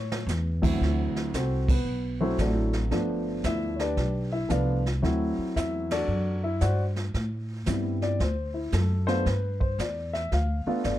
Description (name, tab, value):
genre	jazz piano trio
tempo	114 BPM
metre	4/4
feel	swing 66% on 8ths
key	D mixolydian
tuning	A4 = 440 Hz
part	dark concert grand piano	melody	0.0-11.0 s	D2 to F#5	-28 LUFS	left 1 dB	none
part	upright bass	bass	0.0-11.0 s	G1 to A2	-28 LUFS	equal	none
part	jazz brush drum kit	drums	0.1-11.0 s	brushed snare drum, crash cymbal, hi-hat, kick drum, ride cymbal, snare drum	-31 LUFS	right 1 dB	none
room	little or no reverb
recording	dark, warm production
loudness	-25 LUFS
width	side -13 dB against mid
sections	0.8-11.0 A section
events	drum fill 0.0; band accent 1.6, 5.8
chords	0.0 A; 0.8 D7; 2.9 G7; 5.0 D7; 7.1 Am7; 8.2 D; 9.3 G7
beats	0.27 | 0.80 1.33 1.85 2.38 | 2.91 3.44 3.97 4.50 | 5.03 5.56 6.08 6.61 | 7.14 7.67 8.20 8.73 | 9.26 9.78 10.31 10.84